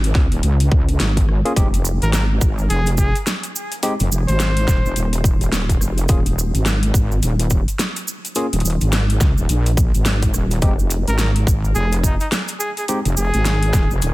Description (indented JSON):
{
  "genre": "glitch hop",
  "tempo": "106 BPM",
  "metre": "4/4",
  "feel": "swing 60% on 16ths",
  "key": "F minor",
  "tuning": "A4 = 440 Hz",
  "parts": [
    { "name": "wobble bass", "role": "bass", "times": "0.0-14.1 s", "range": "Eb1 to Db2", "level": "-18 LUFS", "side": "equal", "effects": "chorus, overdrive" },
    { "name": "dubstep drum kit", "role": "drums", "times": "0.0-14.1 s", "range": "hi-hat, rim click, snare drum", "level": "-25 LUFS", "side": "equal", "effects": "small room reverb" },
    { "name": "electronic kick drum", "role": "drums", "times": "0.1-13.9 s", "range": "none", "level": "-18 LUFS", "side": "equal", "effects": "small room reverb" },
    { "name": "barky tine electric piano", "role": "stabs", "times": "1.5-13.0 s", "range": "Ab3 to Ab4", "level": "-26 LUFS", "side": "equal", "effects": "sidechain pumping, dub echo" },
    { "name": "cabasa", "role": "percussion", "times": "1.6-14.1 s", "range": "none", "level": "-28 LUFS", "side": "right 3 dB", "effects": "none" },
    { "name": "warm trumpet", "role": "melody", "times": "2.0-5.1, 11.1-14.0 s", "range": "Eb4 to C5", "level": "-26 LUFS", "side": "equal", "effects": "dub echo" }
  ],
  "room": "little or no reverb",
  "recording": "dense, heavily limited modern master",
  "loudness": "-16 LUFS",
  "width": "side -19 dB against mid",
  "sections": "0.0-14.1 A section",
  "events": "none",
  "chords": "0.0 Eb7sus4 (rootless); 1.6 Fm7; 6.1 Ebsus4; 10.6 Fm7"
}